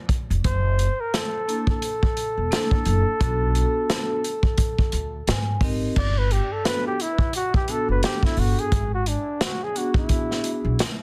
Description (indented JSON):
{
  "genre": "hip hop, jazz-hop",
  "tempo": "87 BPM",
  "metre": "4/4",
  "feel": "swing 59% on 16ths",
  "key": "G major",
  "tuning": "A4 = 437 Hz",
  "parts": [
    { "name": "vintage drum kit", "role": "drums", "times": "0.1-11.0 s", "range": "crash cymbal, hi-hat, kick drum, snare drum", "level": "-26 LUFS", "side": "equal", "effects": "none" },
    { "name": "upright bass", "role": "bass", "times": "0.3-10.8 s", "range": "E1 to Ab2", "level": "-25 LUFS", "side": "equal", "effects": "none" },
    { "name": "breathy flugelhorn", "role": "melody", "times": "0.5-10.6 s", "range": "D4 to D5", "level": "-29 LUFS", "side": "equal", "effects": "tape echo" },
    { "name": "vibraphone with medium hard mallets", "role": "accompaniment", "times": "1.5-10.7 s", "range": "A#3 to Ab5", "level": "-31 LUFS", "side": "equal", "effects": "none" }
  ],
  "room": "little or no reverb",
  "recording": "dense, heavily limited modern master",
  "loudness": "-23 LUFS",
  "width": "mono",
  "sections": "0.0-6.0 A section; 6.0-11.0 B section",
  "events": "vibraphone fill 4.9-6.0; flugelhorn solo 6.0-11.0",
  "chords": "0.4 F#7alt; 3.2 Bm7; 5.3 Abmaj9; 6.0 Gmaj9; 8.7 E7/G#",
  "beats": "| 0.45 1.14 1.82 2.52 | 3.20 3.89 4.58 5.27 | 5.96 6.65 7.34 8.03 | 8.72 9.41 10.10 10.79"
}